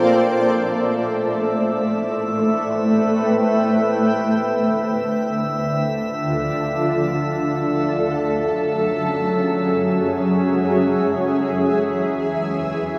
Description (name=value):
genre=ambient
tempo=free time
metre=none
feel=none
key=A minor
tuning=A4 = 440 Hz
part: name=granular cloud pad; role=sustained chords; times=0.0-13.0 s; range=D3 to A5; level=-20 LUFS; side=equal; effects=built-in reverb, shimmer reverb
part: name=drifting glass-harmonics texture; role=texture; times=0.0-13.0 s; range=E5 to G6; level=-30 LUFS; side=equal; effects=chorus, built-in reverb, shimmer reverb
room=wet plate reverb, RT60 2.6 s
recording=dreamy mix soaked in reverb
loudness=-20 LUFS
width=mono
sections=0.3-13.0 A section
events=fade-out on synth texture 0.3-13.0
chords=0.3 Am7; 3.9 Dm; 7.5 F#m7; 11.2 E7